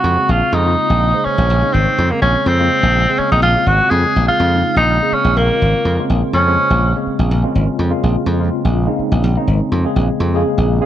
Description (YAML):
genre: electric jazz fusion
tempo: 124 BPM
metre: 4/4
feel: swing 53% on 16ths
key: Bb minor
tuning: A4 = 440 Hz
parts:
  - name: clear tenor saxophone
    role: melody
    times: 0.0-7.0 s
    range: Bb3 to Ab4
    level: -15 LUFS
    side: equal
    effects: none
  - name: barky tine electric piano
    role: accompaniment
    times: 0.0-10.9 s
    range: Db3 to C5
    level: -20 LUFS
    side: left 1 dB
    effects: fast stereo tremolo, wide subtle chorus
  - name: slap bass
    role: bass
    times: 0.0-10.8 s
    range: Ab1 to F2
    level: -15 LUFS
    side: equal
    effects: none
room: light reverb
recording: none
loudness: -12 LUFS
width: side -11 dB against mid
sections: 0.0-10.9 A section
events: none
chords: 0.0 Bbm9